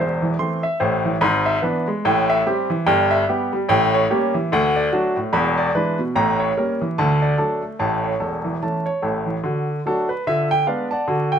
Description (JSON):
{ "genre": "jazz, stride piano", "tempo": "146 BPM", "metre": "4/4", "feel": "swing 59% on 8ths", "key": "D major", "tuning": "A4 = 441 Hz", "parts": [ { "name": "clear baby grand piano", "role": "solo", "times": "0.0-11.4 s", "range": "E1 to C6", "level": "-18 LUFS", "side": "equal", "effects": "none" } ], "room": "moderate studio reverb, RT60 0.9 s", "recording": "vinyl crackle", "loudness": "-18 LUFS", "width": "side -8 dB against mid", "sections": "0.0-9.4 A section; 9.4-11.4 B section", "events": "none", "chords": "0.0 Am; 1.2 E7/G#; 2.1 Am7; 2.9 Em/G; 3.7 A7b9; 4.5 D; 5.3 E7; 6.2 A7b9; 7.0 D; 7.8 A; 9.4 D; 10.3 Ddim7" }